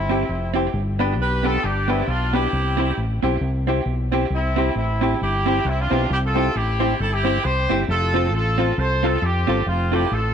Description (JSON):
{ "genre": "ska", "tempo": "134 BPM", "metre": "4/4", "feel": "swing 58% on 8ths", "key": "C major", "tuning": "A4 = 440 Hz", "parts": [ { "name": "warm horn section", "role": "melody", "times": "0.0-10.3 s", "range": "C4 to C5", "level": "-24 LUFS", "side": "equal", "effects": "none" }, { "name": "fingered electric bass", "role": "bass", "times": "0.0-10.3 s", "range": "F1 to F2", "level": "-23 LUFS", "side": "equal", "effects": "none" }, { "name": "hollow-body jazz guitar", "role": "accompaniment", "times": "0.1-10.1 s", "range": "B3 to A4", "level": "-25 LUFS", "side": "right 12 dB", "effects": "slapback echo" }, { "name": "warm upright piano", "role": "stabs", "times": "0.1-10.0 s", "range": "B3 to C5", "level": "-26 LUFS", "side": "left 11 dB", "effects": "tube saturation" } ], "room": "light reverb, studio reverb", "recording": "1960s-style stereo with parts hard left and right", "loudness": "-18 LUFS", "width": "side -8 dB against mid", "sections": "0.0-4.3 A section; 4.3-10.3 B section", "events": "none", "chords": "0.0 C; 0.7 G; 2.5 C; 7.9 F", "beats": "0.29 | 0.74 1.19 1.63 2.08 | 2.52 2.97 3.42 3.86 | 4.31 4.76 5.20 5.65 | 6.09 6.54 6.99 7.43 | 7.88 8.33 8.78 9.22 | 9.67 10.12" }